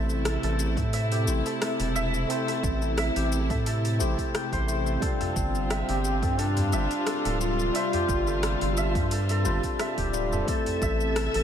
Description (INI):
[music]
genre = organic downtempo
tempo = 88 BPM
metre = 4/4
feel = swing 54% on 16ths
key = A minor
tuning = A4 = 438 Hz
[part]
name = tine electric piano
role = accompaniment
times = 0.0-11.4 s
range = G3 to C5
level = -32 LUFS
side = left 2 dB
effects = medium stereo tremolo, sidechain pumping, analog delay
[part]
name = dark studio string section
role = sustained chords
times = 0.0-11.4 s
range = C3 to E5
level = -33 LUFS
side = equal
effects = sidechain pumping
[part]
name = santur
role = arpeggios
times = 0.0-11.4 s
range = G4 to G5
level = -33 LUFS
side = right 1 dB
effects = vintage 12-bit sampler grit, analog delay
[part]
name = round analog bass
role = bass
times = 0.0-11.4 s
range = D1 to A2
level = -28 LUFS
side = equal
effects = sidechain pumping
[part]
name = deep house drum kit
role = drums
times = 0.1-11.4 s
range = hi-hat, rim click, shaker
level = -35 LUFS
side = left 1 dB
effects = overdrive
[part]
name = electronic kick drum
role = drums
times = 0.8-11.0 s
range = none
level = -31 LUFS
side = equal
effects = overdrive
[part]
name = mellow duduk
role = melody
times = 5.0-11.4 s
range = C4 to A4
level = -30 LUFS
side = equal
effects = analog delay
[part]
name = udu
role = percussion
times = 5.2-10.8 s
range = none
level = -34 LUFS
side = left 1 dB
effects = none
[sound]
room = moderate plate reverb, RT60 2.8 s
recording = dreamy mix soaked in reverb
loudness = -24 LUFS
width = side -9 dB against mid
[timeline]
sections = 0.0-11.4 A section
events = none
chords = 0.0 Am; 5.0 G7sus4; 10.5 Am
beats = 0.26 0.94 1.62 | 2.30 2.98 3.66 4.35 | 5.03 5.71 6.39 7.07 | 7.75 8.44 9.12 9.80 | 10.48 11.16